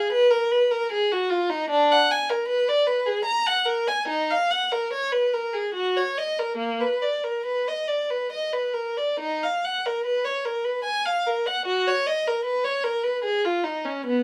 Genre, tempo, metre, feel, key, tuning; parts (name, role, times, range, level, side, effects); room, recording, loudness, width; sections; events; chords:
classical, baroque-style suite movement for unaccompanied violin; 66-77 BPM; 3/4; rubato; Eb minor; A4 = 440 Hz
rich violin; solo; 0.0-14.2 s; Bb3 to Bb5; -24 LUFS; equal
moderate studio ambience, RT60 0.5 s; -24 LUFS; mono
0.0-9.2 A section; 9.2-14.2 A section